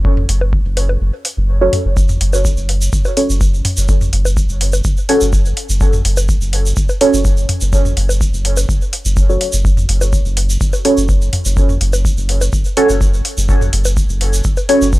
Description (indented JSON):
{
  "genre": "dub techno",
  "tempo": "125 BPM",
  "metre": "4/4",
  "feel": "straight",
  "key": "F# minor",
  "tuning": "A4 = 441 Hz",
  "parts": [
    { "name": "soft dub sub bass", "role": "bass", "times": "0.0-15.0 s", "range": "F#1", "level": "-16 LUFS", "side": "equal", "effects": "sidechain pumping" },
    { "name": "electronic kick drum", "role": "drums", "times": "0.0-15.0 s", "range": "none", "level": "-15 LUFS", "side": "equal", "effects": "overdrive" },
    { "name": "electronic toms and bongos", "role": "percussion", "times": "0.2-14.7 s", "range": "none", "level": "-22 LUFS", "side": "left 1 dB", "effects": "sidechain pumping on toms, sidechain pumping on perc, dub echo" },
    { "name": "electronic hi-hat", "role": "drums", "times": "0.3-14.8 s", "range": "none", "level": "-20 LUFS", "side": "equal", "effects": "overdrive" },
    { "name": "deep mellow chord stab", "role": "stabs", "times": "1.6-14.9 s", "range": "C#4 to C#5", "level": "-17 LUFS", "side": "right 1 dB", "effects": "chorus, phaser, sidechain pumping, dub echo" },
    { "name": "egg shaker", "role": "percussion", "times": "2.0-15.0 s", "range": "none", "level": "-24 LUFS", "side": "right 2 dB", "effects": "none" }
  ],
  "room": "digital ambience",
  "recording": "dry, gritty hardware recording",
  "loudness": "-12 LUFS",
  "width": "side -18 dB against mid",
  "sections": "0.0-15.0 A section",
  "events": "kick drops out 1.0-2.0",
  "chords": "0.0 F#m"
}